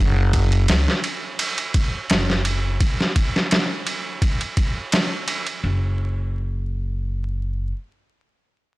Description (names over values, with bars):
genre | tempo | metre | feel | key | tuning
trip hop | 85 BPM | 4/4 | straight | unclear | A4 = 440 Hz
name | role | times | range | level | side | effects
upright bass | bass | 0.0-7.7 s | F#1 to C#2 | -20 LUFS | equal | none
trip hop sampler-style drum kit | drums | 0.3-5.6 s | kick drum, ride cymbal, snare drum | -20 LUFS | equal | none
room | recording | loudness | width
small room ambience | blown-out, overdriven recording, vinyl crackle, overdrive | -19 LUFS | side -20 dB against mid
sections
0.0-5.6 A section; 5.6-8.5 B section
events
filter sweep on upright bass 0.0-2.8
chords
none